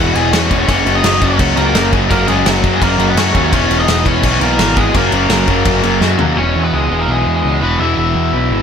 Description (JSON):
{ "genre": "punk rock", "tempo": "169 BPM", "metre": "4/4", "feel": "straight", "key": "F# mixolydian", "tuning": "A4 = 439 Hz", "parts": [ { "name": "raw garage guitar", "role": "melody", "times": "0.0-8.6 s", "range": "F#3 to G#5", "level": "-17 LUFS", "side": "left 1 dB", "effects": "overdrive" }, { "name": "distorted electric guitar", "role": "riff", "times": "0.0-8.6 s", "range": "E2 to F#3", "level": "-19 LUFS", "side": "left 12 dB", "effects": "distortion" }, { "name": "distorted electric guitar", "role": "riff", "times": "0.0-8.6 s", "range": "E2 to F#3", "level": "-20 LUFS", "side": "right 14 dB", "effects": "distortion" }, { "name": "fuzz guitar", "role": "riff", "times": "0.0-6.4 s", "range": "E3 to G#4", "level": "-20 LUFS", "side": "left 1 dB", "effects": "distortion" }, { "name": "growling picked electric bass", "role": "bass", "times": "0.0-8.6 s", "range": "E1 to F#2", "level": "-18 LUFS", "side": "equal", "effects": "overdrive" }, { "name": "loose indie drum kit", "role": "drums", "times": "0.2-6.3 s", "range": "crash cymbal, kick drum, snare drum, toms", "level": "-16 LUFS", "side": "left 1 dB", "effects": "none" } ], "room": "light reverb", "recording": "none", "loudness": "-11 LUFS", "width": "side -7 dB against mid", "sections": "0.0-6.4 A section; 6.4-8.6 B section", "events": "drum fill 6.0-6.4; half time 6.4-8.6", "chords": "0.0 E; 0.7 F#; 3.5 E; 4.9 F#; 6.4 E", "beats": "0.33 | 0.68 1.04 1.39 1.75 | 2.10 2.46 2.81 3.17 | 3.52 3.88 4.24 4.59 | 4.95 5.30 5.66 6.01 | 6.37 6.73 7.08 7.44 | 7.80 8.16 8.52" }